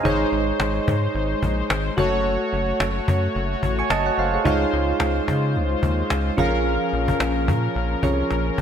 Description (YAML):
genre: 1980s-style pop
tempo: 109 BPM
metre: 4/4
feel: swing 55% on 16ths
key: Db major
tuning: A4 = 440 Hz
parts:
  - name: soft electric-piano-like synth keys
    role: accompaniment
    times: 0.0-8.6 s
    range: Db4 to Db6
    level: -24 LUFS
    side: right 3 dB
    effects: chorus
  - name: analog synth brass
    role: stabs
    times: 0.0-8.6 s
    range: F3 to Db5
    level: -26 LUFS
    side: left 2 dB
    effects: chorus
  - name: rubbery square bass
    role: bass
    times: 0.1-8.6 s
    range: Gb1 to Db3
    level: -24 LUFS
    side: left 1 dB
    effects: none
  - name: cajon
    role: drums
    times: 0.1-8.6 s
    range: none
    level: -26 LUFS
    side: left 2 dB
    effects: none
room: moderate lush hall reverb, RT60 1.8 s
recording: bright 1980s-style digital production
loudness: -19 LUFS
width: side -8 dB against mid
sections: 0.0-8.6 A section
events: drum fill 8.3-8.6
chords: 0.1 Absus4; 2.0 Gbm; 4.5 Dbadd9; 6.4 Bbm7